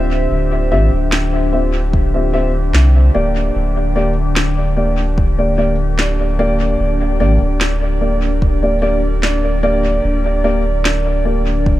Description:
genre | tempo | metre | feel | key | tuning
ambient dub | 74 BPM | 4/4 | straight | D minor | A4 = 435 Hz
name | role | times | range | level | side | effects
warbly tape-like pad | sustained chords | 0.0-11.8 s | D3 to E5 | -21 LUFS | left 2 dB | chorus, built-in reverb, phaser
dark upright piano | stabs | 0.0-11.5 s | Bb3 to E5 | -19 LUFS | equal | dub echo
soft dub sub bass | bass | 0.0-11.8 s | D1 to C2 | -16 LUFS | equal | none
electronic snare drum | drums | 1.1-11.0 s | none | -22 LUFS | equal | dub echo
electronic kick drum | drums | 1.9-11.8 s | none | -16 LUFS | equal | none
room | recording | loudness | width
light reverb | none | -13 LUFS | side -15 dB against mid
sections
0.0-11.8 A section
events
none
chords
0.0 Dm11

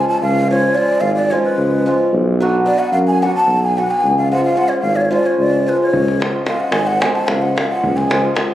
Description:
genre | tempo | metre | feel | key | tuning
balkan folk, Balkan wedding band | 221 BPM (eighths) | 7/8 | straight | C# phrygian dominant | A4 = 437 Hz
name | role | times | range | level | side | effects
breathy mellow ney | melody | 0.0-8.2 s | B4 to A5 | -18 LUFS | equal | none
hammered dulcimer | accompaniment | 0.0-8.5 s | E#3 to F#4 | -18 LUFS | equal | none
mellow tuba | bass | 0.2-8.3 s | G#1 to F#2 | -19 LUFS | equal | none
davul | percussion | 5.9-8.5 s | none | -20 LUFS | left 1 dB | none
room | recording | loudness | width
moderate recital hall reverb, RT60 1.5 s | recorded on a phone in the room, club reverb | -13 LUFS | side -13 dB against mid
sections
0.0-8.5 A section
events
ney solo 0.0-8.5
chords
0.0 C#; 2.1 Bm; 4.0 C#

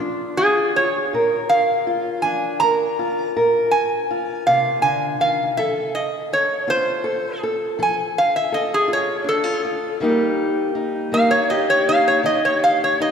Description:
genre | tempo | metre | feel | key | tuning
acoustic country blues, solo or duo | 54 BPM (dotted quarters) | 12/8 | straight | unclear | A4 = 440 Hz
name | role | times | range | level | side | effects
fingerpicked steel-string acoustic guitar | accompaniment | 0.0-13.1 s | Bb2 to Bb4 | -22 LUFS | equal | none
metal-body resonator slide guitar | melody | 0.4-13.1 s | Ab4 to Bb5 | -19 LUFS | right 1 dB | none
room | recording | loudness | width
wet church reverb, RT60 3.2 s | recorded in a church or concert hall | -17 LUFS | side -7 dB against mid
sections
0.0-13.1 A section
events
none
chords
0.0 Bb; 5.6 F; 10.0 Eb

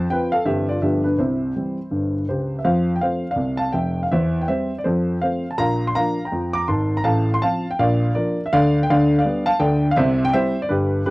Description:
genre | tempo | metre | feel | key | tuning
jazz, stride piano | 164 BPM | 4/4 | swing 61% on 8ths | F major | A4 = 440 Hz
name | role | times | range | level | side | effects
dark grand piano | solo | 0.0-11.1 s | F1 to D6 | -18 LUFS | equal | none
room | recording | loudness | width
moderate booth ambience, RT60 0.2 s | dry, close 1970s-style studio recording | -18 LUFS | side -21 dB against mid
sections
0.0-2.7 A section; 2.7-11.1 B section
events
none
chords
0.5 C/G; 0.8 G13; 1.2 C; 2.7 F; 4.1 C/E; 4.9 F; 5.6 Bb; 7.1 F/A; 7.8 Bb; 8.5 G7/D; 10.0 C

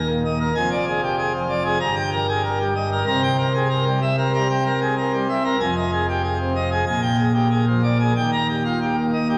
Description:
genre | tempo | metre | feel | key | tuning
classical, organ toccata | 95 BPM | 4/4 | straight | Eb major | A4 = 444 Hz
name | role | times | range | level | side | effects
pipe organ, plenum | solo | 0.0-9.4 s | Eb1 to Bb5 | -21 LUFS | equal | none
room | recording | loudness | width
wet church reverb, RT60 2.9 s | none | -21 LUFS | mono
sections
0.0-9.4 A section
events
none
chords
0.0 Eb5; 0.6 Ddim/F; 1.8 Eb/G; 3.1 C7; 5.6 Fm7; 6.9 Bb6; 8.2 Eb

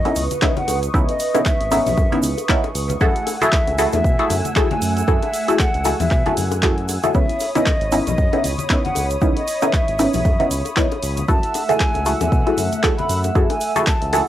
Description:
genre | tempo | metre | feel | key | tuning
deep house | 116 BPM | 4/4 | swing 57% on 16ths | C# minor | A4 = 440 Hz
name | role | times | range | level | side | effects
breathy mellow silver concert flute | melody | 0.0-14.2 s | D#5 to B5 | -24 LUFS | equal | cassette tape, tape echo
warm analog pad | sustained chords | 0.0-14.3 s | A3 to E6 | -27 LUFS | right 2 dB | chorus, sidechain pumping
filtered dub chord stab | stabs | 0.1-14.3 s | B3 to A4 | -20 LUFS | equal | phaser, sidechain pumping
punchy analog drum machine | drums | 0.1-14.2 s | handclaps, hi-hat | -26 LUFS | equal | overdrive, studio reverb, cassette tape
bongos and congas | percussion | 0.1-14.2 s | none | -28 LUFS | left 8 dB | none
smooth synth bass | bass | 0.2-14.2 s | G#1 to B2 | -24 LUFS | equal | sidechain pumping
egg shaker | percussion | 0.2-14.3 s | none | -33 LUFS | right 12 dB | none
electronic kick drum | drums | 0.4-14.0 s | none | -19 LUFS | equal | overdrive, studio reverb, cassette tape
room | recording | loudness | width
moderate booth ambience, RT60 0.2 s | home recording on cassette | -16 LUFS | side -12 dB against mid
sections
0.0-14.3 A section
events
none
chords
0.0 C#m9; 3.0 F#m9; 7.1 C#m9; 11.3 F#m9

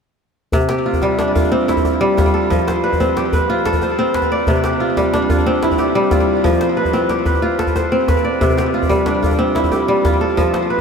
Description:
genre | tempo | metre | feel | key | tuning
west african traditional, West African string and xylophone music | 122 BPM (dotted quarters) | 12/8 | straight | C major | A4 = 438 Hz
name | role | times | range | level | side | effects
kora | arpeggios | 0.5-10.8 s | C3 to D5 | -15 LUFS | equal | ping-pong delay
djembe | percussion | 0.5-10.8 s | none | -20 LUFS | left 1 dB | none
room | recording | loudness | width
wet huge ambient reverb, RT60 7.5 s | dreamy mix soaked in reverb | -14 LUFS | side -6 dB against mid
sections
0.5-10.8 A section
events
none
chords
0.5 C; 2.5 F; 4.5 C; 6.4 F; 8.4 C

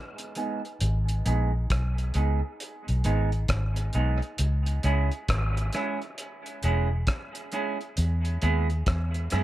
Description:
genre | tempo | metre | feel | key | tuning
dub reggae | 67 BPM | 4/4 | swing 63% on 16ths | G# minor | A4 = 444 Hz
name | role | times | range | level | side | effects
cloth-damped thuddy drum kit | drums | 0.2-9.4 s | hi-hat, kick drum, rim click | -31 LUFS | equal | none
semi-hollow electric guitar | accompaniment | 0.4-9.4 s | G#3 to G#4 | -32 LUFS | right 4 dB | low-pass filter, dub echo
vintage muted fingered electric bass | bass | 0.8-9.4 s | E1 to F#2 | -25 LUFS | equal | none
room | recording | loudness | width
light reverb, studio ambience | echo-heavy mix | -24 LUFS | side -14 dB against mid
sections
0.0-9.4 A section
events
filter sweep on clean electric guitar 0.0-9.4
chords
0.0 G#m; 4.4 C#m; 8.0 E

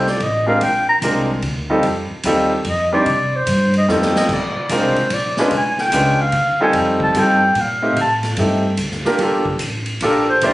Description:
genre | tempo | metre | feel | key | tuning
jazz, small-group swing and bop | 147 BPM | 3/4 | swing 64% on 8ths | F mixolydian | A4 = 440 Hz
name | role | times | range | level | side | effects
breathy clarinet | melody | 0.0-10.5 s | Bb4 to Bb5 | -17 LUFS | equal | none
clear concert grand piano | accompaniment | 0.0-10.5 s | G3 to C5 | -18 LUFS | equal | none
upright bass | bass | 0.0-10.5 s | G1 to C3 | -23 LUFS | equal | none
swinging big-band drum kit | drums | 0.1-10.5 s | crash cymbal, hi-hat, kick drum, ride cymbal, snare drum | -25 LUFS | equal | none
room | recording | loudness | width
moderate club reverb, RT60 0.8 s | recorded on a phone in the room, studio reverb, compression, nothing above 10.7 kHz | -15 LUFS | side -17 dB against mid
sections
0.0-10.5 A section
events
clarinet solo 0.0-10.5; drum fill 3.9-4.3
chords
0.0 F7; 0.6 Bb7; 1.8 F7; 3.1 C5; 3.9 F7; 4.3 Bb7; 5.5 Bdim7; 6.7 F7; 8.0 Am7b5; 8.8 Bb6/D; 9.2 Gm7

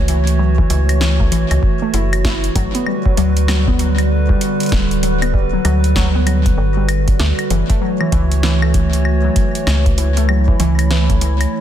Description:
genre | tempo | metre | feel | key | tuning
IDM | 97 BPM | 4/4 | swing 62% on 16ths | F# phrygian | A4 = 440 Hz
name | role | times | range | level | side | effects
warbly tape-like pad | sustained chords | 0.0-11.6 s | D3 to C#5 | -20 LUFS | right 2 dB | chorus, built-in reverb
metallic FM bass | bass | 0.0-11.5 s | D1 to D2 | -16 LUFS | equal | tube saturation
warbly dusty pluck | arpeggios | 0.1-11.4 s | E3 to E4 | -22 LUFS | left 2 dB | chorus, phaser, ping-pong delay
electro analog drum machine | drums | 0.1-11.5 s | claves, hi-hat, snare drum | -23 LUFS | left 1 dB | digital delay
electronic kick drum | drums | 0.6-11.2 s | none | -17 LUFS | equal | none
room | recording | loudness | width
light reverb, digital ambience | dense, heavily limited modern master | -13 LUFS | side -10 dB against mid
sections
0.0-11.6 A section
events
break 11.2-11.6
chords
0.0 F#m7; 2.6 Gmaj7; 7.5 F#m7

